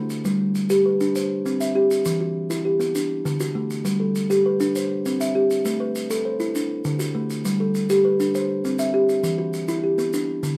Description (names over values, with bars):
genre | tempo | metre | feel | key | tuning
southern african traditional, mbira-style interlocking cycle | 134 BPM (dotted quarters) | 12/8 | straight | G major | A4 = 441 Hz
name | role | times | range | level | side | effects
kalimba | arpeggios | 0.0-10.6 s | D3 to E5 | -22 LUFS | equal | none
maracas | percussion | 0.1-10.6 s | none | -38 LUFS | equal | none
room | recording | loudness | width
moderate studio reverb, RT60 0.7 s | dark, warm production | -22 LUFS | mono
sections
0.0-10.6 A section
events
none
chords
0.3 G; 1.2 C; 2.1 Em; 3.0 D; 3.9 G; 4.8 C; 5.7 Am; 6.6 D; 7.4 G; 8.3 C; 9.2 Em